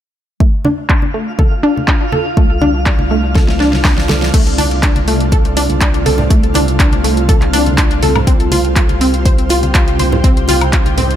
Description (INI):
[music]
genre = progressive house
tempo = 122 BPM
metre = 4/4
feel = straight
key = unclear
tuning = A4 = 441 Hz
[part]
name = wide unison pluck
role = arpeggios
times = 0.4-11.1 s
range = A3 to C5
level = -17 LUFS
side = equal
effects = sidechain pumping, ping-pong delay
[part]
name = electronic kick drum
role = drums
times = 0.4-10.8 s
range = none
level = -12 LUFS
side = equal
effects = none
[part]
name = twinkling granular texture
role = texture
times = 1.1-4.3 s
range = F4 to F5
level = -25 LUFS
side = right 1 dB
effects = built-in reverb, sidechain pumping
[part]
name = congas and bongos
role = percussion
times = 0.6-11.1 s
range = none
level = -21 LUFS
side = right 1 dB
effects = sidechain pumping on perc
[part]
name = deep house drum kit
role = drums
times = 0.9-11.2 s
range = crash cymbal, handclaps, hi-hat, snare drum, woodblock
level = -19 LUFS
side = equal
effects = overdrive, low-pass filter on snare, low-pass filter on hats, low-pass filter on cymbals, low-pass filter on perc
[part]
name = shimmering ambient pad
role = sustained chords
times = 3.1-11.2 s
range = C3 to G4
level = -19 LUFS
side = right 1 dB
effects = chorus, built-in reverb, vintage 12-bit sampler grit, sidechain pumping
[part]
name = saturated sub bass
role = bass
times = 2.4-11.2 s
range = C2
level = -17 LUFS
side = equal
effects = sidechain pumping
[sound]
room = little or no reverb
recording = none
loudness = -10 LUFS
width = side -10 dB against mid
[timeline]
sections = 0.4-4.3 A section; 4.3-11.2 B section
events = filter sweep on synth pluck 0.4-4.3; drum fill 3.4-4.3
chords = 0.4 Dm/C; 8.3 Fsus2/C